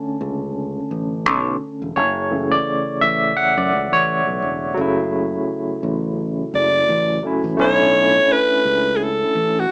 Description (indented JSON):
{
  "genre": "lush 1970s-style soul",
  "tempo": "85 BPM",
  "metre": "4/4",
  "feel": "swing 58% on 16ths",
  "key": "B minor",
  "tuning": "A4 = 440 Hz",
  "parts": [
    { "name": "barky tine electric piano", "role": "accompaniment", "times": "0.0-9.7 s", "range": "C#3 to F#5", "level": "-22 LUFS", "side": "equal", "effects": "overdrive, medium tremolo" },
    { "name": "fingered electric bass", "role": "bass", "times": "0.2-9.6 s", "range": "E1 to F#2", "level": "-26 LUFS", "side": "equal", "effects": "none" },
    { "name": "raspy alto saxophone", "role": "melody", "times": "6.6-9.7 s", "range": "F#4 to D5", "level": "-18 LUFS", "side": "equal", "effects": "none" }
  ],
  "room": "moderate studio reverb, RT60 0.5 s",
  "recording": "band playing live in one room, small speaker sound",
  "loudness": "-19 LUFS",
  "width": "mono",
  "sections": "0.0-4.8 A section; 4.8-7.6 B section; 7.6-9.7 C section",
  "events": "tine electric piano solo 0.0-4.8",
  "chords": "0.0 Bm9; 2.0 F#m7; 7.6 Bm11"
}